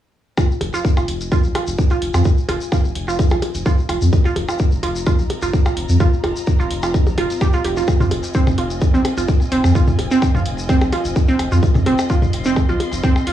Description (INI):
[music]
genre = minimal techno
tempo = 128 BPM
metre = 4/4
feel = swing 54% on 16ths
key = F minor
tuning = A4 = 440 Hz
[part]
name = resonant blip pluck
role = riff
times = 0.4-13.3 s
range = C4 to G4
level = -21 LUFS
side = right 2 dB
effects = chorus, sidechain pumping, cassette tape, analog delay
[part]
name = electronic kick drum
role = drums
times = 0.4-13.1 s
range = none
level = -15 LUFS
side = equal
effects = cassette tape
[part]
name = electronic percussion blips and toms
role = percussion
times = 0.4-13.2 s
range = none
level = -24 LUFS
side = left 1 dB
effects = cassette tape, tape echo
[part]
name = shekere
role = percussion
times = 0.4-13.3 s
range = none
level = -34 LUFS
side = left 4 dB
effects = none
[part]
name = rich studio string section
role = texture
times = 0.4-13.3 s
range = C4 to C6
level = -31 LUFS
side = equal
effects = sidechain pumping, cassette tape
[part]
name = round analog bass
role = bass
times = 0.6-13.3 s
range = F1 to F2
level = -20 LUFS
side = equal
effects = tube saturation, sidechain pumping
[part]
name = electronic hi-hat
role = drums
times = 0.6-13.3 s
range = none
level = -31 LUFS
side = equal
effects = cassette tape
[sound]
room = little or no reverb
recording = home recording on cassette, studio reverb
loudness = -15 LUFS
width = side -11 dB against mid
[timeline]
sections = 0.4-13.3 A section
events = fade-in on string section 0.4-13.3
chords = 0.4 Fm7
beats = | 0.38 0.85 1.32 1.78 | 2.25 2.72 3.19 3.66 | 4.13 4.60 5.07 5.53 | 6.00 6.47 6.94 7.41 | 7.88 8.35 8.82 9.28 | 9.75 10.22 10.69 11.16 | 11.63 12.10 12.57 13.03